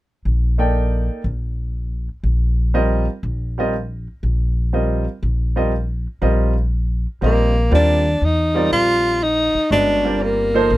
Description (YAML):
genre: modal jazz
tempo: 120 BPM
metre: 4/4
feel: swing 68% on 8ths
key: Eb lydian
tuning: A4 = 440 Hz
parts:
  - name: upright bass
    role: bass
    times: 0.3-10.8 s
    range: G1 to Fb2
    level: -19 LUFS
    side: equal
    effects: none
  - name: warm concert grand piano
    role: accompaniment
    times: 0.6-10.7 s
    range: F3 to G5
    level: -21 LUFS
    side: right 2 dB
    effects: none
  - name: breathy tenor saxophone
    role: melody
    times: 7.2-10.8 s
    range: Bb3 to F4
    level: -17 LUFS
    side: equal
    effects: none
room: little or no reverb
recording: close, detailed microphones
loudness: -16 LUFS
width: side -16 dB against mid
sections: 0.0-7.7 A section; 7.7-10.8 B section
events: none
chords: 0.0 Ebadd9; 7.7 Ebmaj9